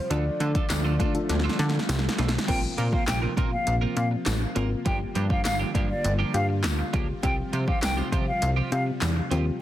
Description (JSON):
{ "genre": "dance-pop", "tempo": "101 BPM", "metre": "4/4", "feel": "straight", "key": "unclear", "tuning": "A4 = 443 Hz", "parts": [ { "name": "mellow horn-like synth lead", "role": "melody", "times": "0.0-1.9 s", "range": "C5 to D5", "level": "-35 LUFS", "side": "equal", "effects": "chorus, digital delay" }, { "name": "soft supersaw", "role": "sustained chords", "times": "0.0-9.6 s", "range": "C3 to F4", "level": "-34 LUFS", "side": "equal", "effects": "sidechain pumping" }, { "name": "soft round pluck", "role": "accompaniment", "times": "0.1-9.5 s", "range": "A3 to Bb4", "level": "-34 LUFS", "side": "left 4 dB", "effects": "chorus, sidechain pumping" }, { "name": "twelve-string electric guitar", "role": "riff", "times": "0.1-9.5 s", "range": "F3 to Bb4", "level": "-34 LUFS", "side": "right 7 dB", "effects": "lush chorus" }, { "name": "plucky analog bass", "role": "bass", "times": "0.1-9.5 s", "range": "G1 to D3", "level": "-26 LUFS", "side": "equal", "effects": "sidechain pumping" }, { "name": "deep house drum kit", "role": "drums", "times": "0.1-9.5 s", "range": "crash cymbal, handclaps, hi-hat, kick drum, snare drum", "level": "-28 LUFS", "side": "equal", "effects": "overdrive" }, { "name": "tambourine", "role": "percussion", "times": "0.7-9.2 s", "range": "none", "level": "-41 LUFS", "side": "left 8 dB", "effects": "none" }, { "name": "hollow concert flute", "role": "melody", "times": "2.5-8.8 s", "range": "D5 to G5", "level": "-31 LUFS", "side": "left 1 dB", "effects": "sidechain pumping, digital delay" } ], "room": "light reverb", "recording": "dense, heavily limited modern master", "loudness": "-23 LUFS", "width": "side -13 dB against mid", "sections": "0.0-2.5 A section; 2.5-9.6 B section", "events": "drum fill 1.3-2.5", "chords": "0.1 Dm; 2.5 Bbsus2; 4.9 Gm7; 7.2 Csus4" }